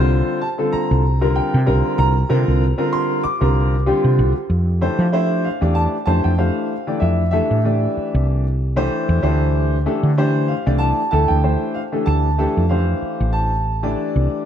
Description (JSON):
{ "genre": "electric jazz fusion", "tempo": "95 BPM", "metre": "4/4", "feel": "swing 55% on 16ths", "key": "F major from 4.5 s", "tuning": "A4 = 439 Hz", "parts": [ { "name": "warm concert grand piano", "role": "accompaniment", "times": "0.0-14.5 s", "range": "D3 to D6", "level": "-19 LUFS", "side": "left 1 dB", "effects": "wide subtle chorus" }, { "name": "woody fretless electric bass", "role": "bass", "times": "0.0-14.3 s", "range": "A1 to F3", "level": "-17 LUFS", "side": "equal", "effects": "none" } ], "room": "light reverb, small room ambience", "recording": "bright 1980s-style digital production", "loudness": "-16 LUFS", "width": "side -9 dB against mid", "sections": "0.0-4.5 A section; 4.5-14.5 B section", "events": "none", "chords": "0.0 C9sus4; 4.5 Fmaj9; 9.2 Dm7", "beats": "0.10 0.73 1.35 | 1.98 2.61 3.24 3.87 | 4.50 5.13 5.76 6.39 | 7.02 7.65 8.28 8.91 | 9.54 10.18 10.81 11.44 | 12.08 12.71 13.35 13.98" }